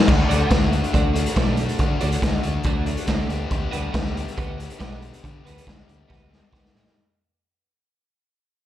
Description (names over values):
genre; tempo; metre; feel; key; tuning
indie rock; 140 BPM; 4/4; straight; D major; A4 = 440 Hz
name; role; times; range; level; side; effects
crunchy overdriven guitar; riff; 0.0-6.9 s; D3 to G4; -28 LUFS; left 6 dB; slapback echo
twelve-string electric guitar; riff; 0.0-6.8 s; D3 to D5; -30 LUFS; right 4 dB; analog chorus, tape echo, slapback echo
growling fingered electric bass; bass; 0.1-6.9 s; B1 to D3; -25 LUFS; equal; overdrive
raw garage drum kit; drums; 0.1-7.0 s; crash cymbal, hi-hat, kick drum, snare drum; -21 LUFS; equal; none
room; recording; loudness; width
little or no reverb; live gig heard through the venue's PA, club reverb; -19 LUFS; side -12 dB against mid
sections
0.1-6.9 A section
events
fade-out 0.1-6.9; drum fill 6.1-6.9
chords
0.1 D; 3.3 Gmaj7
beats
| 0.07 0.50 0.93 1.36 | 1.79 2.22 2.65 3.08 | 3.51 3.94 4.37 4.80 | 5.23 5.66 6.08 6.51